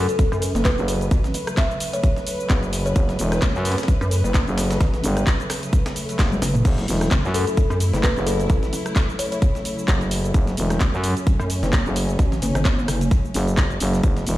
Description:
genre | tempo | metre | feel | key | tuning
bass house | 130 BPM | 4/4 | swing 56% on 16ths | F# minor | A4 = 440 Hz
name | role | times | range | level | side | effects
kalimba | melody | 0.0-3.3, 7.3-9.4 s | A4 to E5 | -28 LUFS | left 2 dB | ping-pong delay
dark studio string section | sustained chords | 0.0-14.4 s | C#3 to B4 | -29 LUFS | equal | sidechain pumping, low-pass filter
growling FM bass | bass | 0.0-14.4 s | E1 to F#2 | -22 LUFS | equal | tube saturation, sidechain pumping
garage drum kit | drums | 0.1-14.4 s | cabasa, crash cymbal, handclaps, hi-hat, rim click, snare drum, toms | -28 LUFS | equal | none
breakbeat sampler-style drum kit | drums | 0.2-14.4 s | hi-hat, snare drum | -35 LUFS | equal | none
electronic kick drum | drums | 0.2-14.1 s | none | -19 LUFS | equal | none
pulsing pluck wobble bass | bass | 0.3-13.1 s | F#1 to F#2 | -22 LUFS | equal | chorus, sidechain pumping
room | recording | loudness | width
digital ambience | played on a big sound system in a bare room, stone room reverb | -18 LUFS | side -15 dB against mid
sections
0.0-14.4 A section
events
drum fill 6.2-6.7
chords
0.0 F#m

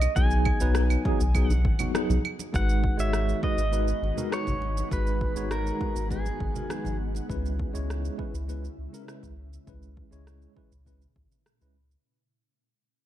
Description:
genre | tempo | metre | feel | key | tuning
sunset chillout | 101 BPM | 4/4 | straight | G# minor | A4 = 440 Hz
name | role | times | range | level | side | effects
pedal steel guitar | melody | 0.0-7.0 s | G#4 to G#5 | -33 LUFS | right 2 dB | digital delay
warm sub bass | bass | 0.0-12.0 s | G#1 to C#2 | -27 LUFS | equal | none
electronic claves, shaker and rim click | drums | 0.0-12.0 s | none | -36 LUFS | right 2 dB | overdrive
congas | percussion | 0.0-7.3 s | none | -37 LUFS | right 3 dB | none
mellow tine electric piano | accompaniment | 0.2-11.8 s | D#3 to C#5 | -32 LUFS | moving between left 5 dB and right 2 dB | medium stereo tremolo, auto-pan, tape echo
electronic kick drum | drums | 0.2-11.3 s | none | -30 LUFS | equal | overdrive
shimmering ambient pad | sustained chords | 3.4-12.0 s | A#2 to F#4 | -39 LUFS | left 1 dB | chorus, built-in reverb
room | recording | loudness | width
light reverb | dark, warm production | -24 LUFS | side -12 dB against mid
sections
0.0-2.5 A section; 2.5-12.0 B section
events
fade-out 2.5-12.0; filter sweep on ambient pad 2.5-12.0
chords
0.0 B6; 2.5 G#m7; 7.3 C#m7

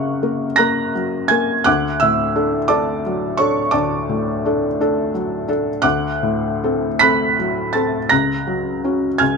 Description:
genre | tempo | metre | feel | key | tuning
classical, romantic nocturne for solo piano | 49-60 BPM (dotted quarters) | 12/8 | rubato | unclear | A4 = 440 Hz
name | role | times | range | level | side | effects
felt-muted upright piano | solo | 0.0-9.4 s | C#2 to B6 | -16 LUFS | equal | none
room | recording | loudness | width
light reverb | close, detailed microphones | -16 LUFS | side -4 dB against mid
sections
0.0-9.4 A section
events
none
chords
0.0 F#; 1.7 D; 5.8 D7; 8.1 F#/C#

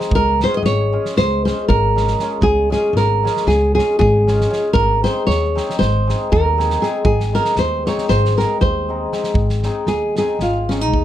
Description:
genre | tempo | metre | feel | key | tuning
balkan folk, Balkan wedding band | 234 BPM (eighths) | 9/8 | straight | Ab major | A4 = 441 Hz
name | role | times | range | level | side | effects
nylon-string guitar | melody | 0.0-11.0 s | Db4 to Eb5 | -17 LUFS | right 1 dB | none
cimbalom | accompaniment | 0.0-11.0 s | Ab3 to Ab4 | -23 LUFS | left 5 dB | none
loose indie drum kit | percussion | 0.0-11.0 s | kick drum, snare drum | -24 LUFS | right 1 dB | none
upright bass | bass | 0.1-11.0 s | Ab1 to Eb2 | -20 LUFS | equal | none
room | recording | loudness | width
light reverb | dark, warm production | -14 LUFS | side -12 dB against mid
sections
0.1-9.4 A section; 9.4-11.0 B section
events
nylon-string guitar solo 9.4-11.0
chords
0.1 Db; 4.7 Ab

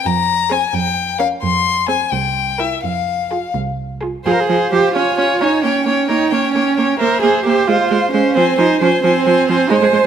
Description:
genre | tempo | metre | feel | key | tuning
quick classical-period movement for string quartet | 88 BPM (dotted quarters) | 6/8 | straight | F minor | A4 = 442 Hz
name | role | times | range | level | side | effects
rich violin | melody | 0.0-10.1 s | E5 to C6 | -20 LUFS | left 8 dB | none
rich cello | bass | 0.1-10.1 s | C2 to C5 | -17 LUFS | right 5 dB | none
rich violin | second line | 0.5-10.1 s | Eb4 to Db5 | -19 LUFS | left 1 dB | none
clear viola | accompaniment | 0.5-10.1 s | F3 to F4 | -19 LUFS | right 4 dB | none
room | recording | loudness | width
moderate recital hall reverb, RT60 1.7 s | faint mains hum | -13 LUFS | side -8 dB against mid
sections
0.0-4.3 A section; 4.3-10.1 A section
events
none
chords
0.1 Fm; 0.7 Bbm/F; 1.4 Fm; 2.1 C7; 2.8 Fm; 5.0 Db; 5.6 Gdim/Bb; 7.0 C7/Bb; 7.7 Fm/Ab; 8.4 Fm

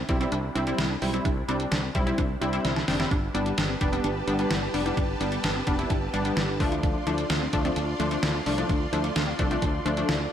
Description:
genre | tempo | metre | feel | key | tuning
synth-pop | 129 BPM | 4/4 | straight | C major | A4 = 440 Hz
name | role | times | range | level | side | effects
resonant blip pluck | arpeggios | 0.0-10.3 s | C4 to E4 | -34 LUFS | right 1 dB | phaser, analog delay, slapback echo
funky polysynth comp | accompaniment | 0.1-10.1 s | F3 to E4 | -28 LUFS | left 1 dB | chorus
fretless electric bass | bass | 0.1-10.3 s | F1 to D2 | -31 LUFS | equal | none
detuned 8-bit digital drum machine | drums | 0.1-10.2 s | hi-hat, kick drum, snare drum | -28 LUFS | equal | none
string machine, violas | sustained chords | 3.1-10.3 s | F4 to C6 | -33 LUFS | right 1 dB | ensemble chorus
room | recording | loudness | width
moderate lush hall reverb, RT60 1.9 s, digital ambience | big arena sound | -24 LUFS | side -9 dB against mid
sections
0.0-10.3 A section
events
drum fill 2.6-3.1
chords
0.0 Cadd9; 3.1 Gadd9; 6.6 Dm7

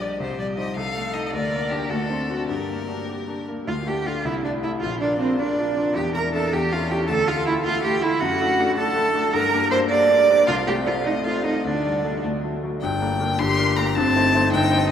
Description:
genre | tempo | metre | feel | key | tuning
quick classical-period movement for piano trio | 105 BPM (dotted quarters) | 6/8 | straight | G minor, D minor from 3.7 s, G minor from 8.2 s | A4 = 440 Hz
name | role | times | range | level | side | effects
clear violin | melody | 0.0-14.9 s | G4 to D6 | -27 LUFS | left 4 dB | none
rich cello | second line | 0.0-14.9 s | C4 to D5 | -22 LUFS | right 3 dB | none
clear concert grand piano | accompaniment | 0.0-14.9 s | G1 to D5 | -24 LUFS | left 3 dB | none
room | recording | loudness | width
wet cathedral reverb, RT60 5.5 s | in a vast, echoing space | -19 LUFS | side -8 dB against mid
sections
0.0-3.7 A section; 3.7-12.8 B section; 12.8-14.9 C section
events
none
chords
0.2 Cm; 0.8 Adim/C; 1.3 Gm/D; 1.9 D7; 2.5 Gm; 3.7 D5; 4.2 Am/C; 4.8 Bb; 6.0 Gm69/E; 6.5 A/E; 7.1 Dm; 8.2 D/F#; 9.3 Gm; 10.5 F9/C; 11.6 Dsus4; 12.2 D; 12.8 Gm; 14.0 Am7b5/G

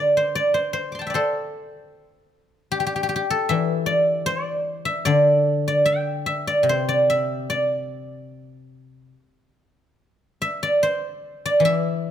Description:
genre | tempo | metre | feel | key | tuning
chinese traditional, Chinese solo plucked strings | 75 BPM | 4/4 | uneven beats, rubato | D shang mode | A4 = 440 Hz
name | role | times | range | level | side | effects
guzheng | solo | 0.0-12.1 s | C3 to D6 | -20 LUFS | equal | none
room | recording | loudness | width
light reverb | close, detailed microphones | -19 LUFS | side -9 dB against mid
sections
0.0-10.0 A section; 10.0-12.1 B section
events
none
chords
none

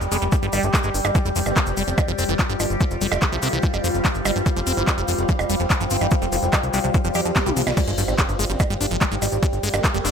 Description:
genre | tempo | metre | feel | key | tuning
psychedelic trance | 145 BPM | 4/4 | straight | unclear | A4 = 440 Hz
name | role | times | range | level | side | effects
overtone-sweeping drone | sustained chords | 0.0-10.1 s | G3 to G4 | -28 LUFS | left 2 dB | chorus, built-in reverb, sidechain pumping
fat analog bass | bass | 0.0-10.1 s | F1 to F2 | -25 LUFS | equal | none
techno drum kit | drums | 0.0-10.1 s | crash cymbal, handclaps, hi-hat, percussion blips, snare drum, toms | -25 LUFS | right 2 dB | none
cabasa | percussion | 0.0-10.1 s | none | -34 LUFS | left 4 dB | none
ethereal airy pad | texture | 0.0-10.1 s | F4 to G5 | -29 LUFS | left 1 dB | ensemble chorus, built-in reverb, sidechain pumping
liquid acid bass | riff | 0.1-10.1 s | E3 to G4 | -27 LUFS | left 1 dB | phaser, auto-pan, sidechain pumping, dub echo
electronic kick drum | drums | 0.3-9.9 s | none | -21 LUFS | equal | none
formant-sweep wobble bass | second line | 1.5-10.1 s | F3 to C4 | -38 LUFS | right 4 dB | none
swell and impact | sound effects | 7.1-9.4 s | none | -31 LUFS | equal | none
room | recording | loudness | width
light reverb, digital ambience | none | -18 LUFS | side -7 dB against mid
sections
0.0-7.8 A section; 7.8-10.1 B section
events
swell 7.1-7.8; drum fill 7.4-7.8; drop 7.8-10.1; impact 7.8-9.4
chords
0.0 G5; 1.2 F5; 7.8 G5

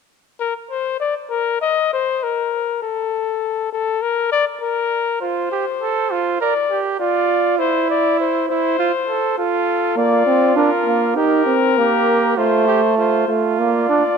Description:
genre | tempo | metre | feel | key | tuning
classical, imitative canzona for brass ensemble | 100 BPM | 4/4 | straight | Bb major | A4 = 440 Hz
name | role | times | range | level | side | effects
warm cornet | melody | 0.4-14.2 s | A4 to Eb5 | -19 LUFS | left 8 dB | none
mellow trumpet | second line | 5.2-14.2 s | E4 to Bb4 | -20 LUFS | right 8 dB | none
clear trombone | accompaniment | 10.0-14.0 s | A3 to Eb4 | -17 LUFS | right 4 dB | none
room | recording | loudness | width
moderate concert hall reverb, RT60 1.9 s | close, detailed microphones | -16 LUFS | side -6 dB against mid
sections
0.4-14.2 A section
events
none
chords
0.4 N.C.; 5.2 F; 6.4 Bb (rootless); 7.6 C/E; 8.8 F; 10.0 Bb; 11.2 Eb; 12.4 F/A; 13.6 Bb

